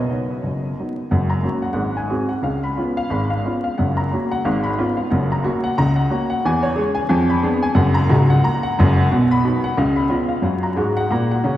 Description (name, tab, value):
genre	jazz, stride piano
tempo	180 BPM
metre	4/4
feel	swing 58% on 8ths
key	F# major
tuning	A4 = 440 Hz
part	warm upright piano	solo	0.0-11.6 s	C#1 to B5	-17 LUFS	equal	diffuse ambient delay
room	wet lush hall reverb, RT60 2.8 s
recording	dreamy mix soaked in reverb, vinyl crackle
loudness	-17 LUFS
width	side -13 dB against mid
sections	0.0-1.1 A section; 1.1-11.6 B section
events	upright piano fill 10.8-11.6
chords	0.0 B; 1.1 F#; 1.8 G#7; 2.4 C#7; 3.8 F#; 4.4 C#7/G#; 5.1 F#; 6.4 C#m/E; 7.1 Fdim7; 7.8 F#; 9.1 B; 9.8 C#7; 10.5 F#